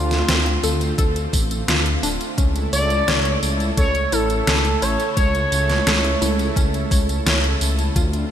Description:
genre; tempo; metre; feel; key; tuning
synthwave; 86 BPM; 4/4; straight; unclear; A4 = 440 Hz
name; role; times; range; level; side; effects
expressive synth lead; melody; 0.0-6.5 s; F4 to D5; -23 LUFS; right 1 dB; chorus, ping-pong delay
warm analog pad; sustained chords; 0.0-8.3 s; C#3 to A4; -28 LUFS; right 1 dB; chorus, sidechain pumping
analog pluck; arpeggios; 0.0-8.1 s; C4 to C#5; -29 LUFS; left 2 dB; chorus, ping-pong delay
dark detuned saw bass; bass; 0.0-8.2 s; D1 to D2; -22 LUFS; equal; tube saturation
pop drum kit; drums; 0.1-8.3 s; hi-hat, snare drum, tambourine; -23 LUFS; equal; overdrive, gated reverb
electronic kick drum; drums; 1.0-8.1 s; none; -19 LUFS; equal; overdrive
room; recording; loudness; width
moderate lush hall reverb, RT60 2.9 s; bright 1980s-style digital production; -17 LUFS; side -10 dB against mid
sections
0.0-8.3 A section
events
none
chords
0.0 Dm7; 2.4 A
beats
0.29 0.98 1.68 | 2.38 3.08 3.77 4.47 | 5.17 5.87 6.57 7.26 | 7.96

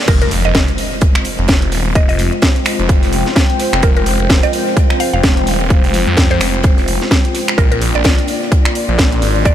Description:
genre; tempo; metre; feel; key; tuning
bass house; 128 BPM; 4/4; swing 58% on 16ths; F dorian; A4 = 440 Hz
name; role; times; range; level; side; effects
dark analog pad; sustained chords; 0.0-9.5 s; Ab3 to D5; -22 LUFS; left 1 dB; chorus, sidechain pumping
mallet-like synth pluck; melody; 0.1-9.5 s; Bb4 to F5; -23 LUFS; right 1 dB; chorus, ping-pong delay
phased detuned saw bass; bass; 0.1-9.5 s; Eb1 to F2; -17 LUFS; equal; phaser, tube saturation, sidechain pumping, high-pass filter
damped 70s drum kit; drums; 0.1-9.5 s; hi-hat, snare drum; -31 LUFS; right 3 dB; none
electronic kick drum; drums; 0.1-9.5 s; none; -13 LUFS; equal; overdrive
house drum kit; drums; 0.1-9.5 s; crash cymbal, finger snaps, hi-hat, snare drum; -18 LUFS; equal; overdrive, high-pass filter on snare, high-pass filter on hats, high-pass filter on cymbals, high-pass filter on room
impact; sound effects; 0.1-2.0 s; none; -24 LUFS; equal; none
deep dark ambient pad; texture; 1.6-9.5 s; F4 to C6; -23 LUFS; left 1 dB; chorus, built-in reverb, sidechain pumping
room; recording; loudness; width
light reverb, digital ambience; none; -11 LUFS; side -11 dB against mid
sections
0.1-9.5 A section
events
drop 0.1-9.5; impact 0.1-2.0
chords
0.1 Fm; 7.6 Bb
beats
| 0.08 0.55 1.02 1.49 | 1.95 2.42 2.89 3.36 | 3.83 4.30 4.77 5.24 | 5.70 6.17 6.64 7.11 | 7.58 8.05 8.52 8.98 | 9.45

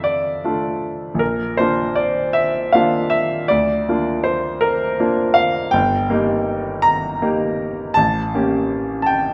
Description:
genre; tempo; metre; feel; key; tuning
classical, romantic nocturne for solo piano; 53 BPM (dotted quarters); 12/8; rubato; unclear; A4 = 439 Hz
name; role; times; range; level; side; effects
clear grand piano; solo; 0.0-9.3 s; G1 to Bb5; -19 LUFS; equal; none
room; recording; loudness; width
moderate scoring stage reverb, RT60 1.6 s; none; -19 LUFS; mono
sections
0.0-9.3 A section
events
none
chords
0.0 Dm/F; 1.2 Bb; 3.5 Bb/D; 5.7 Eb/G; 8.0 A7b9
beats
0.06 | 1.20 2.35 3.50 4.63 | 5.74 6.84 7.96 9.08

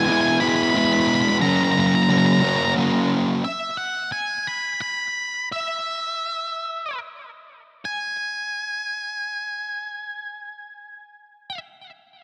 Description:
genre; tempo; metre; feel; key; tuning
rock; 47-60 BPM (dotted quarters); 6/8; straight; unclear; A4 = 440 Hz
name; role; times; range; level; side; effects
octave-fuzz lead guitar; melody; 0.0-11.6 s; E5 to B5; -26 LUFS; equal; distortion, tape echo
fuzz guitar; riff; 0.0-3.4 s; F#2 to E4; -21 LUFS; equal; distortion
room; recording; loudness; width
light reverb, digital ambience; none; -22 LUFS; mono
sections
0.0-3.4 A section; 3.4-7.8 B section; 7.8-12.2 C section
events
slowing down 3.4-7.8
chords
0.0 E; 1.4 F#; 3.4 N.C.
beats
0.41 | 1.42 2.42 | 3.43 4.46 | 5.51 6.64 | 7.85 9.12 | 10.38

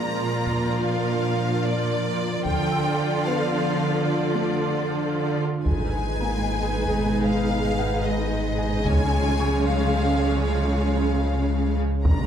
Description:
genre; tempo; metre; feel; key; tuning
cinematic, hybrid orchestral and electronic film score; 75 BPM (dotted quarters); 6/8; straight; G# dorian; A4 = 443 Hz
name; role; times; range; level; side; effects
rich symphonic violin section; melody; 0.0-12.3 s; D5 to A#5; -30 LUFS; left 3 dB; none
rich symphonic violin section; second line; 0.0-12.3 s; G#4 to D5; -31 LUFS; left 1 dB; none
clear symphonic viola section; accompaniment; 0.0-12.3 s; E#3 to E#4; -30 LUFS; right 2 dB; none
deep dark ambient pad; sustained chords; 0.0-12.3 s; B2 to A#4; -29 LUFS; left 1 dB; chorus, built-in reverb
warm symphonic cello section; bass; 0.0-12.3 s; G#2 to D3; -27 LUFS; right 2 dB; none
felt-muted upright piano; texture; 0.0-12.1 s; A3 to E6; -36 LUFS; left 2 dB; none
taiko ensemble; drums; 0.5-12.3 s; none; -25 LUFS; equal; none
punchy sub bass; bass; 5.7-12.3 s; G#1 to C#2; -26 LUFS; equal; none
room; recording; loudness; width
moderate scoring stage reverb, RT60 2.0 s; none; -21 LUFS; side -8 dB against mid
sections
0.0-5.7 A section; 5.7-12.3 A section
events
none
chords
0.0 A#; 2.5 Dm; 5.7 G#m; 8.9 C#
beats
0.06 | 0.86 1.66 | 2.46 3.26 | 4.06 4.86 | 5.66 6.46 | 7.26 8.06 | 8.86 9.66 | 10.46 11.26 | 12.06

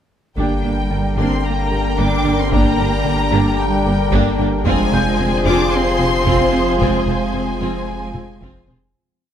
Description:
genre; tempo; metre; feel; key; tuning
cinematic, hybrid orchestral and electronic film score; 112 BPM; 4/4; straight; G phrygian; A4 = 440 Hz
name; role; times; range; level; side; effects
rich symphonic violin section; melody; 0.4-8.6 s; G5 to D6; -25 LUFS; left 3 dB; none
dark studio violin section; second line; 0.4-8.7 s; Ab4 to G5; -24 LUFS; left 2 dB; none
rich studio viola section; accompaniment; 0.4-8.8 s; Bb3 to F4; -23 LUFS; right 1 dB; none
clear trombone section; sustained chords; 0.4-8.6 s; C3 to G3; -28 LUFS; right 3 dB; none
deep dark ambient pad; sustained chords; 1.6-8.9 s; D3 to C5; -24 LUFS; right 1 dB; chorus, built-in reverb
warm French horn section; sustained chords; 0.4-8.6 s; Bb3 to F4; -26 LUFS; left 3 dB; none
thumb-piano-like synth pluck; arpeggios; 0.4-8.8 s; F3 to G4; -29 LUFS; equal; none
punchy sub bass; bass; 0.4-8.9 s; F1 to G1; -24 LUFS; equal; none
rich symphonic cello section; bass; 0.4-8.6 s; G3 to D4; -24 LUFS; right 2 dB; none
rich symphonic double bass section; bass; 0.4-8.8 s; F1 to G1; -23 LUFS; right 2 dB; none
taiko ensemble; drums; 0.4-8.9 s; none; -24 LUFS; equal; none
clear baby grand piano; texture; 0.4-9.0 s; G4 to G6; -33 LUFS; left 2 dB; none
room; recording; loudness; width
moderate scoring stage reverb, RT60 2.0 s; none; -14 LUFS; side -9 dB against mid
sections
0.4-8.9 theme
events
fade-out 6.8-8.9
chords
0.4 Gm; 4.7 Fm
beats
| 0.38 0.91 1.45 1.98 | 2.52 3.06 3.59 4.13 | 4.66 5.20 5.73 6.27 | 6.81 7.34 7.88 8.41

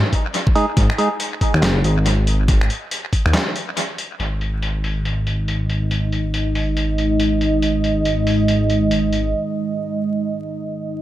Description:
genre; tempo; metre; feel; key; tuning
deep dubstep; 140 BPM; 4/4; swing 60% on 16ths, half-time; unclear; A4 = 441 Hz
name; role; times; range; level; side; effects
dark detuned saw bass; bass; 0.0-9.3 s; F#1 to D#2; -19 LUFS; equal; none
electronic kick drum; drums; 0.1-3.2 s; none; -17 LUFS; equal; overdrive
trip hop sampler-style drum kit; drums; 0.1-9.2 s; finger snaps, handclaps, hi-hat, snare drum; -24 LUFS; left 1 dB; low-pass filter on hats, low-pass filter on snare, low-pass filter on room, dub echo
percussive organ stab; stabs; 0.6-1.1 s; G#3 to G#4; -24 LUFS; right 1 dB; chorus, dub echo
dark analog pad; sustained chords; 5.3-11.0 s; G#3 to D#5; -20 LUFS; right 2 dB; chorus
room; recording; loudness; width
moderate plate reverb, RT60 2.1 s; echo-heavy mix, vinyl crackle; -17 LUFS; side -13 dB against mid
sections
0.0-4.2 A section; 4.2-11.0 B section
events
break 3.3-4.2, 9.3-11.0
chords
0.0 G#5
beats
0.34 | 0.77 1.20 1.63 2.06 | 2.48 2.91 3.34 3.77 | 4.20 4.63 5.05 5.48 | 5.91 6.34 6.77 7.20 | 7.63 8.05 8.48 8.91 | 9.34 9.77 10.20 10.63

